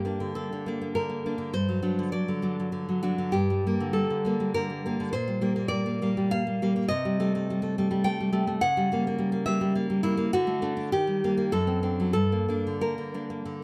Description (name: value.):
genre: romantic piece for solo classical guitar.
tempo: 91-106 BPM.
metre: 3/4.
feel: rubato.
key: G minor.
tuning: A4 = 438 Hz.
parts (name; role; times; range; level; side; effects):
nylon-string guitar; solo; 0.0-13.6 s; F#2 to G5; -27 LUFS; equal; none.
room: light reverb.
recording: close, detailed microphones.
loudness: -27 LUFS.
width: mono.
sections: 0.0-13.6 A section.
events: none.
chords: 0.0 Gm; 1.5 D7/G; 3.3 Gm; 5.1 Gm/Bb; 6.9 Am7b5/C; 8.6 C#dim7; 10.3 D; 10.9 Eb; 11.5 D7/F#; 12.2 Gm.